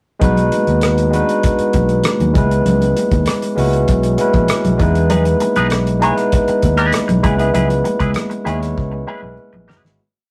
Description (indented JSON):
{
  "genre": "lush 1970s-style soul",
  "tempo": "98 BPM",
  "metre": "4/4",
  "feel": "straight",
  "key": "C# minor",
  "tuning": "A4 = 435 Hz",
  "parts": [
    { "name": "barky tine electric piano", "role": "accompaniment", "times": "0.2-10.0 s", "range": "G#3 to C#5", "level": "-19 LUFS", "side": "equal", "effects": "none" },
    { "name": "fretless electric bass", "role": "bass", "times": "0.2-10.0 s", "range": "F#1 to E2", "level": "-20 LUFS", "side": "equal", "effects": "none" },
    { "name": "damped 70s drum kit", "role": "drums", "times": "0.2-10.0 s", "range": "hi-hat, kick drum, rim click, snare drum", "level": "-21 LUFS", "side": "equal", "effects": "none" },
    { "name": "congas", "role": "percussion", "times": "0.2-9.8 s", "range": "none", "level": "-26 LUFS", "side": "equal", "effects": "none" },
    { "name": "clean electric guitar", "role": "riff", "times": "5.1-9.9 s", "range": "D#4 to C#5", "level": "-22 LUFS", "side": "equal", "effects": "wah" }
  ],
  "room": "moderate studio reverb, RT60 0.6 s",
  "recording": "rough rehearsal-room recording, warm saturation",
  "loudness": "-15 LUFS",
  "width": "mono",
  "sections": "0.2-10.0 verse",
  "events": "fade-out 7.5-10.0; drum fill 8.8-10.0",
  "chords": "0.2 B6; 2.4 C#m7; 4.8 Emaj7; 7.2 C#m7",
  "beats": "| 0.22 0.83 1.44 2.05 | 2.66 3.27 3.88 4.49 | 5.10 5.71 6.33 6.94 | 7.55 8.16 8.77 9.38"
}